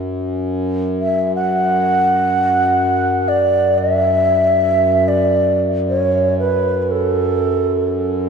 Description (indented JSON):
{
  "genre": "world meditative, free-time meditation music",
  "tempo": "free time",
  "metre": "none",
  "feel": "none",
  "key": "F# minor",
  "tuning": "A4 = 439 Hz",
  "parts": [
    { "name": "hand-pumped harmonium", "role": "drone", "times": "0.0-8.3 s", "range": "F#2", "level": "-19 LUFS", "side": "equal", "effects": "none" },
    { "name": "low xiao", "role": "melody", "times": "1.0-8.3 s", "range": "A4 to F#5", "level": "-16 LUFS", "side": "right 1 dB", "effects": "ping-pong delay" }
  ],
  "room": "wet church reverb, RT60 3.5 s",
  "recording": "dark, warm production",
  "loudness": "-14 LUFS",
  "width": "side -6 dB against mid",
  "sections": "0.0-8.3 A section",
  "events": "none",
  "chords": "none",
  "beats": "free time"
}